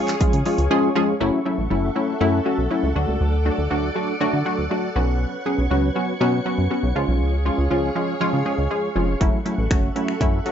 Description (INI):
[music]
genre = dance-pop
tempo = 120 BPM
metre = 4/4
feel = straight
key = F# minor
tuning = A4 = 440 Hz
[part]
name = funky polysynth comp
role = accompaniment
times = 0.0-10.5 s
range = E#3 to G#4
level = -22 LUFS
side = equal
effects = chorus, sidechain pumping
[part]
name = soft string machine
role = sustained chords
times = 0.0-10.5 s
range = G#4 to D6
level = -28 LUFS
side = equal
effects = ensemble chorus, sidechain pumping
[part]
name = pop drum kit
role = drums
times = 0.1-0.7, 9.2-10.5 s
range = finger snaps, handclaps, hi-hat, kick drum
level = -21 LUFS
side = equal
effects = none
[part]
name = egg shaker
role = percussion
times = 0.1-0.7 s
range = none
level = -49 LUFS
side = left 4 dB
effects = none
[part]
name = chorused synth bass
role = bass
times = 0.2-10.4 s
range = E#1 to D3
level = -22 LUFS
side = equal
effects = sidechain pumping
[sound]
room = moderate studio reverb, RT60 0.6 s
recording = rough home demo mix, nothing above 7.8 kHz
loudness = -19 LUFS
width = side -9 dB against mid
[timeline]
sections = 0.0-1.2 A section; 1.2-10.5 B section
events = silent gap 0.7-1.2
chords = 0.0 C#; 1.2 F#m7; 3.0 D; 5.0 Bsus2; 7.0 C#; 9.2 F#m7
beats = 0.21 0.71 | 1.21 1.71 2.21 2.71 | 3.21 3.71 4.21 4.71 | 5.21 5.71 6.21 6.71 | 7.21 7.71 8.21 8.71 | 9.21 9.71 10.21